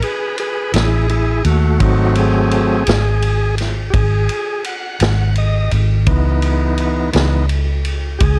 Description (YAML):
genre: slow blues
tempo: 56 BPM (dotted quarters)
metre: 12/8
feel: straight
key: unclear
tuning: A4 = 439 Hz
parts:
  - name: overdriven tonewheel organ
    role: sustained chords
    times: 0.0-8.4 s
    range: E3 to F#5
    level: -21 LUFS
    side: equal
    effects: slow rotary speaker
  - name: vintage drum kit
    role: drums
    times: 0.0-8.4 s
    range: kick drum, ride cymbal, snare drum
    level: -24 LUFS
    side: equal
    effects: none
  - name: vintage muted fingered electric bass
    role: bass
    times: 0.7-8.4 s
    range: G#1 to D#2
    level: -18 LUFS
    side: equal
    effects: none
room: studio reverb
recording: dark, warm production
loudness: -16 LUFS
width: mono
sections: 0.0-8.4 A section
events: tonewheel organ solo 0.0-8.4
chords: 0.0 Amaj7(no3); 1.8 G#7b9; 6.1 C#m7